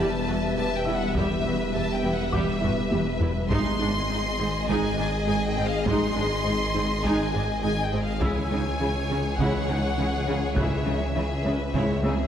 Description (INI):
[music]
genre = cinematic, hybrid orchestral and electronic film score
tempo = 102 BPM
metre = 4/4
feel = straight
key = unclear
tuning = A4 = 440 Hz
[part]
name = rich symphonic violin section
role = melody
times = 0.0-12.3 s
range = E5 to C6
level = -31 LUFS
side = left 2 dB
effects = none
[part]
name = rich symphonic violin section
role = second line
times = 0.0-12.3 s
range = Ab4 to E5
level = -32 LUFS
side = left 2 dB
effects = none
[part]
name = warm symphonic viola section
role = accompaniment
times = 0.0-12.1 s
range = G3 to G4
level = -31 LUFS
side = right 1 dB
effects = none
[part]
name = warbly tape-like pad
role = sustained chords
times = 0.0-12.3 s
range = Eb3 to E5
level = -31 LUFS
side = equal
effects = chorus, built-in reverb
[part]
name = tight sequenced synth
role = arpeggios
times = 0.0-12.2 s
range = C#3 to Ab4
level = -36 LUFS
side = equal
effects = none
[part]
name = detuned saw bass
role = bass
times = 0.0-12.3 s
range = E1 to C#2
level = -30 LUFS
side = equal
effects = none
[part]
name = rich symphonic cello section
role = bass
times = 0.0-12.1 s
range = E2 to C#3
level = -31 LUFS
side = right 2 dB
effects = none
[part]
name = warm baby grand piano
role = texture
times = 0.0-12.3 s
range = E5 to F#6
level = -41 LUFS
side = left 3 dB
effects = tape echo
[part]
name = taiko ensemble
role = drums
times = 1.1-12.3 s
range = none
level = -30 LUFS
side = equal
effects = none
[part]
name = swell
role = sound effects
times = 11.7-12.3 s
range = none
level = -38 LUFS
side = right 2 dB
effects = none
[sound]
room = wet scoring stage reverb, RT60 1.9 s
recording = none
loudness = -23 LUFS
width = side -9 dB against mid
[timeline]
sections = 0.0-12.3 A section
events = drum fill 2.6-3.5, 12.0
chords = 0.0 Em; 3.5 Ab; 8.2 C#m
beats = 0.57 | 1.15 1.74 2.33 2.92 | 3.51 4.09 4.68 5.27 | 5.86 6.45 7.04 7.62 | 8.21 8.80 9.39 9.98 | 10.57 11.15 11.74